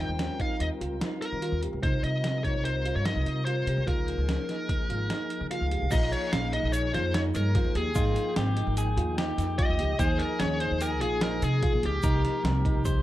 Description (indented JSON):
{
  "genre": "progressive instrumental, band music in an uneven meter",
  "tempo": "147 BPM",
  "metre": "5/4",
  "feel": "straight",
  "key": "Bb dorian",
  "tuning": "A4 = 444 Hz",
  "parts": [
    { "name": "smooth overdriven lead guitar", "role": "melody", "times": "0.0-12.4 s", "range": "G4 to G5", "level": "-32 LUFS", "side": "left 2 dB", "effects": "analog delay" },
    { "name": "mellow tonewheel organ", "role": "accompaniment", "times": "0.0-13.0 s", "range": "F3 to G5", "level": "-37 LUFS", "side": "left 6 dB", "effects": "chorus vibrato" },
    { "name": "dark concert grand piano", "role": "arpeggios", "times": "0.0-13.0 s", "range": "C4 to G4", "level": "-35 LUFS", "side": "right 6 dB", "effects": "none" },
    { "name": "upright bass", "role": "bass", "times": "0.0-13.0 s", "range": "Ab1 to Eb3", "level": "-29 LUFS", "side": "equal", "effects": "none" },
    { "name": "dusty soul sampler-style drum kit", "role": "drums", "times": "0.2-12.9 s", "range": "crash cymbal, hi-hat, kick drum, snare drum", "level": "-30 LUFS", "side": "equal", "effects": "overdrive" },
    { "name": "electric guitar at the edge of break-up", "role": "second line", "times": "5.9-13.0 s", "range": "Eb4 to C5", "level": "-36 LUFS", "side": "left 1 dB", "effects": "none" },
    { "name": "egg shaker", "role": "percussion", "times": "5.9-13.0 s", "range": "none", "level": "-47 LUFS", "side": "right 9 dB", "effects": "none" }
  ],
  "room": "digital ambience",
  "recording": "dark, warm production",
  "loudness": "-25 LUFS",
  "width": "side -14 dB against mid",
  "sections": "0.0-5.9 A section; 5.9-13.0 B section",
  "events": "none",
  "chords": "0.0 Eb7; 1.8 Cm7; 3.9 Bbm7/Db; 5.9 Bbm7; 8.0 Abmaj7sus2; 10.0 Eb7sus4; 12.0 Cm7"
}